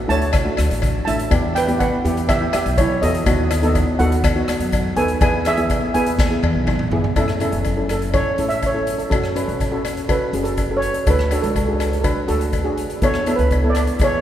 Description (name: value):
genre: calypso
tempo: 123 BPM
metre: 4/4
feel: straight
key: A major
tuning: A4 = 440 Hz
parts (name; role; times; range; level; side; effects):
- steel pan; melody; 0.0-14.2 s; E4 to A5; -23 LUFS; right 2 dB; none
- steel pan; accompaniment; 0.1-14.2 s; A3 to B4; -22 LUFS; equal; none
- upright bass; bass; 0.1-14.2 s; E1 to F#2; -23 LUFS; equal; none
- street-band drum kit; drums; 0.1-14.1 s; hi-hat, kick drum, rim click, snare drum, toms; -23 LUFS; equal; none
- cowbell; percussion; 0.3-14.1 s; none; -27 LUFS; left 4 dB; none
room: wet cathedral reverb, RT60 4.6 s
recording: recorded in a church or concert hall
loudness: -16 LUFS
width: side -11 dB against mid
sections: 0.0-7.2 A section; 7.2-14.2 B section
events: drum fill 6.2-7.2; steel pan solo 7.2-14.2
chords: 0.0 Dadd9; 1.3 Em; 3.3 B7/D#; 5.2 E; 7.2 A; 9.1 F#m; 11.1 D; 13.0 Esus4